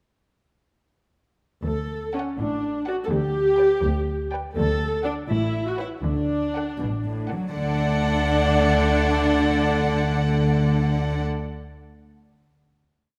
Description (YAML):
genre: cinematic, playful, whimsical film cue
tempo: 82 BPM (dotted quarters)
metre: 6/8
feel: straight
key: D major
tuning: A4 = 440 Hz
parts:
  - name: warm chamber viola section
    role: accompaniment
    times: 1.6-11.2 s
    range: C#4 to A4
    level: -29 LUFS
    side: equal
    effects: none
  - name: warm chamber double bass section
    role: bass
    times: 1.6-11.2 s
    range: A1 to D2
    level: -30 LUFS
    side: equal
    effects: none
  - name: mellow French horn section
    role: sustained chords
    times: 1.7-11.2 s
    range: A3 to A4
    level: -31 LUFS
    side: equal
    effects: none
  - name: dark chamber cello section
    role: bass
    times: 1.7-11.2 s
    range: D2 to F#3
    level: -28 LUFS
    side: equal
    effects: none
  - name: warm chamber violin section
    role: melody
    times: 2.1-11.2 s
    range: F#5 to G5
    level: -33 LUFS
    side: equal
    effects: none
  - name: warm chamber violin section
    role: second line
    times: 2.1-11.2 s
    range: A4 to D5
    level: -33 LUFS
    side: equal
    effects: none
room: moderate scoring stage reverb, RT60 1.9 s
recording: none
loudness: -23 LUFS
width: mono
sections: 1.7-7.5 A section; 7.5-10.5 final chord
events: none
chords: 1.7 D; 3.1 G/D; 4.6 D; 5.3 A69; 6.0 D